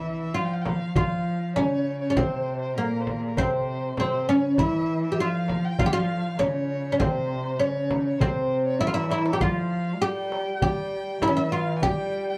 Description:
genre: Arabic maqam ensemble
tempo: 99 BPM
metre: 4/4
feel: straight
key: C maqam hijaz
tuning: A4 = 437 Hz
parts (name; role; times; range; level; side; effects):
- oud; melody; 0.0-12.4 s; Bb3 to G4; -28 LUFS; equal; none
- dark cello; second line; 0.0-12.4 s; Bb2 to Ab3; -32 LUFS; equal; none
- warm violin; second line; 0.0-12.4 s; Ab4 to Ab5; -36 LUFS; equal; none
- darbuka; percussion; 0.0-12.0 s; none; -34 LUFS; equal; none
- frame drum; percussion; 0.7-12.0 s; none; -32 LUFS; equal; none
room: wet studio ambience, RT60 0.5 s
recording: heard from further back in the room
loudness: -25 LUFS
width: mono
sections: 0.0-12.4 A section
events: drum fill 8.8-9.4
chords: none

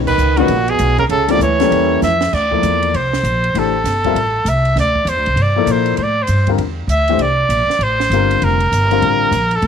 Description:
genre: modal jazz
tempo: 197 BPM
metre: 4/4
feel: swing 62% on 8ths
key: D minor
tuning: A4 = 440 Hz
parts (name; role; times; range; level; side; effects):
- warm grand piano; accompaniment; 0.0-9.3 s; D3 to E5; -19 LUFS; left 14 dB; none
- upright bass; bass; 0.0-9.7 s; F1 to Bb2; -18 LUFS; equal; none
- clear trumpet; melody; 0.1-9.7 s; Gb4 to E5; -16 LUFS; right 1 dB; none
- clear trombone; second line; 0.1-2.2 s; Bb2 to F3; -20 LUFS; right 12 dB; none
- compact cocktail drum kit; drums; 0.1-9.7 s; crash cymbal, hi-hat, kick drum, ride cymbal, snare drum; -28 LUFS; right 8 dB; none
room: light reverb, small room ambience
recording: 1960s-style stereo with parts hard left and right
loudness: -13 LUFS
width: side -7 dB against mid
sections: 0.0-2.3 A section; 2.3-9.7 B section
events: band accent 0.0; drum fill 2.0-2.3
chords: 0.0 Abm11; 1.1 A7b9; 2.3 D9sus4; 7.2 C9sus4

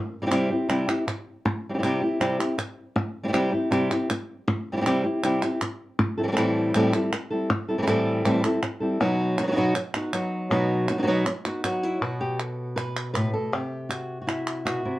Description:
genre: flamenco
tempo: 159 BPM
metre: 4/4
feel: straight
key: unclear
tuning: A4 = 439 Hz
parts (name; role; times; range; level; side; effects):
- flamenco guitar; melody; 0.2-15.0 s; A2 to B4; -23 LUFS; equal; plate reverb
- palmas hand claps; percussion; 0.3-14.9 s; none; -31 LUFS; right 1 dB; none
room: moderate small room reverb, RT60 0.5 s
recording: worn, warbling old tape, cassette tape, warbly pitch drift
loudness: -23 LUFS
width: side -16 dB against mid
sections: 0.0-12.0 A section; 12.0-15.0 B section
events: none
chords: 0.0 C; 6.0 Am7; 9.0 B; 12.0 B5; 13.5 C

